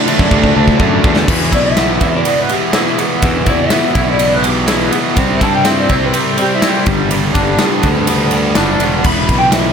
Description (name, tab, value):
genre	quiet-loud alternative rock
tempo	124 BPM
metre	4/4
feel	straight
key	unclear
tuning	A4 = 440 Hz
part	electric guitar through a small old amp	melody	0.0-9.7 s	D4 to B5	-18 LUFS	left 1 dB	analog chorus, digital delay
part	string machine, full ensemble	sustained chords	0.0-1.3, 9.0-9.7 s	E3 to F#6	-32 LUFS	right 1 dB	none
part	fuzz guitar	riff	0.0-9.7 s	E2 to D4	-20 LUFS	left 11 dB	distortion
part	fuzz guitar	riff	0.0-9.7 s	E2 to D4	-18 LUFS	right 13 dB	distortion
part	raw garage guitar	riff	0.0-1.3 s	D3 to D4	-19 LUFS	left 1 dB	overdrive
part	big rock drum kit	drums	0.1-9.6 s	crash cymbal, kick drum, ride cymbal, snare drum	-15 LUFS	equal	none
part	fuzz fingered electric bass	bass	0.2-9.7 s	E1 to G2	-18 LUFS	equal	overdrive
part	twangy electric guitar	arpeggios	1.3-9.0 s	G2 to E4	-20 LUFS	right 1 dB	tremolo, plate reverb
room	moderate studio reverb, RT60 0.8 s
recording	none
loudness	-10 LUFS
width	side -7 dB against mid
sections	0.0-1.3 A section; 1.3-9.7 B section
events	drum fill 0.3-1.3; clean electric guitar solo 1.3-9.7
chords	0.0 Dadd9; 1.3 E; 5.2 C; 6.9 G; 9.0 E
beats	0.31 0.80 | 1.28 1.77 2.26 2.74 | 3.23 3.72 4.20 4.69 | 5.17 5.66 6.14 6.63 | 7.11 7.60 8.08 8.57 | 9.05 9.53